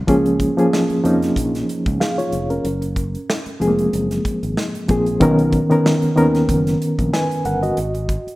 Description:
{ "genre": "lush 1970s-style soul", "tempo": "94 BPM", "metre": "4/4", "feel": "swing 54% on 16ths", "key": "Db mixolydian", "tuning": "A4 = 440 Hz", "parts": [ { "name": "reed electric piano", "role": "accompaniment", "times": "0.0-7.9 s", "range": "Eb3 to Ab5", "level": "-17 LUFS", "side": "equal", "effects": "overdrive, fast tremolo" }, { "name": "fingered electric bass", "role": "bass", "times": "0.1-8.3 s", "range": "F1 to F2", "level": "-24 LUFS", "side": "equal", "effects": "none" }, { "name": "modern studio drum kit", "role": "drums", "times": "0.1-8.4 s", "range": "hi-hat, kick drum, snare drum", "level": "-24 LUFS", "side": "equal", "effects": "none" } ], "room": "light reverb, small room ambience", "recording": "rough home demo mix", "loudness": "-16 LUFS", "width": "side -18 dB against mid", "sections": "0.1-8.4 A section", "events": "none", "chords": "0.1 Db6; 2.6 Gbmaj9#11; 5.2 Cbmaj9; 7.8 Ab7(no3)" }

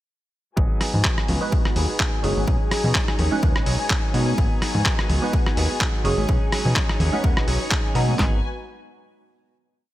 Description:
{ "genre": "filtered disco house", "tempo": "126 BPM", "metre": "4/4", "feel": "swing 55% on 16ths", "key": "G# minor", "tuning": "A4 = 440 Hz", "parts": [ { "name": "warm studio string section", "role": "sustained chords", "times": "0.6-8.4 s", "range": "B3 to G#5", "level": "-32 LUFS", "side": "left 2 dB", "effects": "vintage 12-bit sampler grit, sidechain pumping, low-pass filter" }, { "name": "direct-recorded clean electric guitar", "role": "riff", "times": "0.6-8.4 s", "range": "F#3 to G#4", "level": "-31 LUFS", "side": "equal", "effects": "wide subtle chorus, sidechain pumping, low-pass filter" }, { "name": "fat analog bass", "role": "bass", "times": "0.6-8.4 s", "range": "F#1 to B2", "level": "-23 LUFS", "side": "equal", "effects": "sidechain pumping, low-pass filter" }, { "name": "punchy analog drum machine", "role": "drums", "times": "0.6-8.3 s", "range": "handclaps, kick drum, snare drum", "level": "-22 LUFS", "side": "equal", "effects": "none" }, { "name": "tambourine and congas", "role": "percussion", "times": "0.6-8.2 s", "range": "none", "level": "-31 LUFS", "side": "left 1 dB", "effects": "sidechain pumping on perc, low-pass filter on perc" }, { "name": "dusty soul sampler-style drum kit", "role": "drums", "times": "0.8-8.1 s", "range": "handclaps, hi-hat, rim click", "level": "-26 LUFS", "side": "equal", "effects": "sidechain pumping on hats" }, { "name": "funky polysynth comp", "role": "accompaniment", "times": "1.4-8.4 s", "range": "G#3 to B4", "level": "-28 LUFS", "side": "right 2 dB", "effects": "chorus, phaser, sidechain pumping, low-pass filter" } ], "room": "light reverb", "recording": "bright 1980s-style digital production", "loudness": "-19 LUFS", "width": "side -15 dB against mid", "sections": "0.6-8.2 groove; 8.2-9.9 final chord", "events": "filter sweep 0.6-8.2", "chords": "0.6 G#m7; 2.5 B69; 4.4 G#m7; 6.3 B69; 8.2 G#m7" }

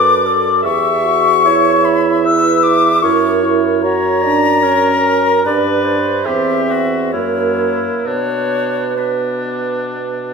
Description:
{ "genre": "classical, slow romantic movement for wind quintet", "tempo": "65-76 BPM", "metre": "3/4", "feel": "rubato", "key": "B minor", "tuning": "A4 = 443 Hz", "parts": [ { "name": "mellow silver concert flute", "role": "melody", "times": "0.0-9.9 s", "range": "B4 to E6", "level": "-16 LUFS", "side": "left 5 dB", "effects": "none" }, { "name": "warm oboe", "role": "second line", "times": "0.0-10.3 s", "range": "D4 to E5", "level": "-22 LUFS", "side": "left 2 dB", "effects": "none" }, { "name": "dark clarinet", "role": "accompaniment", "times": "0.0-10.3 s", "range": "A4 to E5", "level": "-20 LUFS", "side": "right 8 dB", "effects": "none" }, { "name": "warm French horn", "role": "accompaniment", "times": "0.0-10.3 s", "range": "A#3 to A4", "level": "-19 LUFS", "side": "right 4 dB", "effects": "none" }, { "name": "dark bassoon", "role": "bass", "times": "0.0-10.3 s", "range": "E2 to B2", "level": "-21 LUFS", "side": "right 3 dB", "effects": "none" } ], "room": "wet scoring stage reverb, RT60 1.6 s", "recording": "minimal, uncompressed stereo recording", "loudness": "-12 LUFS", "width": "side -5 dB against mid", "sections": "0.0-10.3 A section", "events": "none", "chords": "0.0 D/F#; 0.7 Em; 3.0 F#7; 5.5 G; 6.3 C/E; 7.1 F#7; 8.1 Bm" }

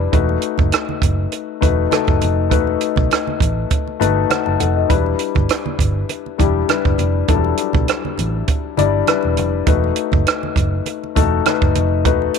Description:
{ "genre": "lush 1970s-style soul", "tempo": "101 BPM", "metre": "4/4", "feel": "swing 54% on 16ths", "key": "unclear", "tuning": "A4 = 441 Hz", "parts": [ { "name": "warm grand piano", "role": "accompaniment", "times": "0.0-12.4 s", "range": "F#3 to A5", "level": "-19 LUFS", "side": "left 14 dB", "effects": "none" }, { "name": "vintage muted fingered electric bass", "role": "bass", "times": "0.0-12.3 s", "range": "E1 to B1", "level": "-19 LUFS", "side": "right 1 dB", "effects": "none" }, { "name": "compact cocktail drum kit", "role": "drums", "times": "0.1-12.4 s", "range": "hi-hat, kick drum, rim click", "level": "-18 LUFS", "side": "right 4 dB", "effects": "none" }, { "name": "congas", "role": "percussion", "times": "0.1-12.3 s", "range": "none", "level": "-28 LUFS", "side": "right 10 dB", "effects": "none" } ], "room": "light reverb, small room ambience", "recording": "1960s-style stereo with parts hard left and right", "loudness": "-15 LUFS", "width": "side -6 dB against mid", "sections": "0.0-12.4 A section", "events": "grand piano fill 3.7-4.9", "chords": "0.1 B7/E; 4.9 Em7; 9.7 B7/E" }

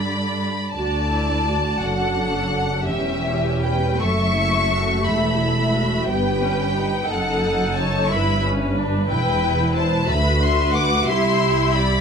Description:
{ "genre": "classical, slow romantic movement for string orchestra", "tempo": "46-61 BPM (dotted quarters)", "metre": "6/8", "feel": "rubato", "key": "D major", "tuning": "A4 = 440 Hz", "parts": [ { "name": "warm studio violin section", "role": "melody", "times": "0.0-12.0 s", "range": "E5 to D6", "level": "-24 LUFS", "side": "left 2 dB", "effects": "none" }, { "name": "warm studio violin section", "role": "second line", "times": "0.0-12.0 s", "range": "G4 to F#5", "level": "-26 LUFS", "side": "left 2 dB", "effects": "none" }, { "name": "rich chamber viola section", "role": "accompaniment", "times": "0.0-12.0 s", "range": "D3 to B4", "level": "-24 LUFS", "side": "equal", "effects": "none" }, { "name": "warm chamber cello section", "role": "bass", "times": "0.0-12.0 s", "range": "C2 to G2", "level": "-25 LUFS", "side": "right 1 dB", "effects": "none" }, { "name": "rich chamber double bass section", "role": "bass", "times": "0.8-12.0 s", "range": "E1 to D2", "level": "-24 LUFS", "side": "right 2 dB", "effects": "none" } ], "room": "moderate recital hall reverb, RT60 1.4 s", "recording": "close, detailed microphones", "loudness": "-18 LUFS", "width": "side -6 dB against mid", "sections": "0.7-12.0 A section", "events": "none", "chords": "0.0 G; 0.7 D; 2.9 C#dim/E; 4.0 F#m7; 5.1 Em; 7.1 D#dim/F#; 8.1 Em/G; 9.1 Em; 11.1 C" }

